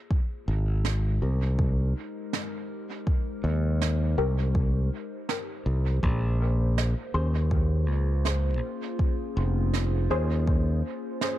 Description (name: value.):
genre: ambient dub.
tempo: 81 BPM.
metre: 4/4.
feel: straight.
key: Bb dorian.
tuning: A4 = 439 Hz.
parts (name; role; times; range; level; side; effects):
warbly tape-like pad; sustained chords; 0.0-11.4 s; Ab3 to Db5; -36 LUFS; left 2 dB; chorus, built-in reverb.
electronic kick drum; drums; 0.1-10.6 s; none; -26 LUFS; equal; none.
modern bright fingered electric bass; bass; 0.5-10.8 s; F1 to Eb2; -24 LUFS; equal; tube saturation.
snare drum; drums; 0.8-11.4 s; none; -34 LUFS; right 7 dB; dub echo.
filtered dub chord stab; stabs; 1.2-11.4 s; C4 to C5; -33 LUFS; left 3 dB; phaser, dub echo.
room: little or no reverb.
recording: none.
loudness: -24 LUFS.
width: side -14 dB against mid.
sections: 0.0-11.4 A section.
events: fade-in on ambient pad 0.0-11.4.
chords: 0.1 Abmaj7; 6.0 Bbm7.